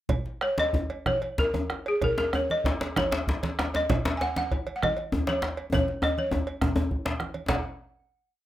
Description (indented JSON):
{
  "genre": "west african traditional, West African drum ensemble",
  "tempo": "124-143 BPM (dotted quarters)",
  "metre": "12/8",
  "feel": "straight",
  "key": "unclear",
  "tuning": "A4 = 436 Hz",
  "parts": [
    { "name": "bombo", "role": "percussion", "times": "0.1-7.6 s", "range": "none", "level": "-31 LUFS", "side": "right 1 dB", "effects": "none" },
    { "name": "congas", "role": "percussion", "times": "0.1-7.6 s", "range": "none", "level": "-32 LUFS", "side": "right 3 dB", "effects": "none" },
    { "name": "cowbell", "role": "percussion", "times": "0.1-7.6 s", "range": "none", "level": "-36 LUFS", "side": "right 5 dB", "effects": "none" },
    { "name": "djembe", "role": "percussion", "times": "0.1-7.6 s", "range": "none", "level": "-38 LUFS", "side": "left 1 dB", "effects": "none" },
    { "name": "balafon", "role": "melody", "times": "0.4-7.6 s", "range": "G#4 to G#5", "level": "-28 LUFS", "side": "equal", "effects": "plate reverb" },
    { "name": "djembe", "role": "percussion", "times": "0.6-7.6 s", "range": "none", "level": "-29 LUFS", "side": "left 1 dB", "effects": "none" }
  ],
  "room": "moderate studio reverb, RT60 0.6 s",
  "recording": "rough home demo mix",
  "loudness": "-25 LUFS",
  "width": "side -13 dB against mid",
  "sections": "0.1-7.5 A section; 7.5-8.5 final note",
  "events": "speeding up 0.1-8.5; drum fill 5.7-7.5",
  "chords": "none",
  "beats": "| 0.09 0.58 1.06 1.54 | 2.02 2.49 2.97 3.44 | 3.90 4.37 4.83 5.28 | 5.73 6.18 6.62 7.05 | 7.49"
}